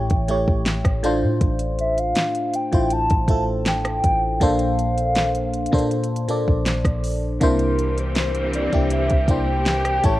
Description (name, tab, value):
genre	contemporary R&B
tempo	80 BPM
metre	4/4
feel	straight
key	unclear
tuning	A4 = 441 Hz
part	hollow clarinet-like synth lead	melody	0.0-10.2 s	Bb4 to A5	-24 LUFS	equal	chorus, cassette tape, analog delay
part	FM electric piano	accompaniment	0.0-10.2 s	A2 to D5	-23 LUFS	left 1 dB	chorus, phaser
part	warm 808-style bass	bass	0.0-10.2 s	A1 to Bb2	-25 LUFS	equal	none
part	smooth R&B drum kit	drums	0.1-10.2 s	hi-hat, kick drum, rim click, snare drum	-22 LUFS	equal	none
part	clear studio string section	sustained chords	7.4-10.2 s	E3 to A4	-28 LUFS	right 1 dB	sidechain pumping
room	little or no reverb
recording	home recording on cassette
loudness	-18 LUFS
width	side -16 dB against mid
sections	0.0-10.2 A section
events	none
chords	0.0 A7; 1.0 Dm7/A; 4.4 Bbmaj7; 7.4 C7